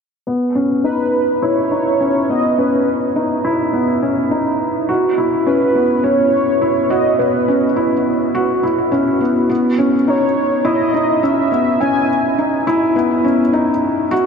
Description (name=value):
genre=electronica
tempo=104 BPM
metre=4/4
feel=straight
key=C# minor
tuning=A4 = 440 Hz
part: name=felt-muted upright piano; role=riff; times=0.3-14.3 s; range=B3 to F#4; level=-15 LUFS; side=equal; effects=low-pass filter, ping-pong delay
part: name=warm velvety synth lead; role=melody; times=0.8-12.4 s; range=B4 to G#5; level=-19 LUFS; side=equal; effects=chorus, ping-pong delay
room=wet huge ambient reverb, RT60 7.7 s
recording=dreamy mix soaked in reverb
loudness=-14 LUFS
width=side -6 dB against mid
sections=0.3-14.3 A section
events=filter sweep on felt piano 0.3-14.3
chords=0.3 C#m9; 4.9 F#7sus4; 9.5 C#m9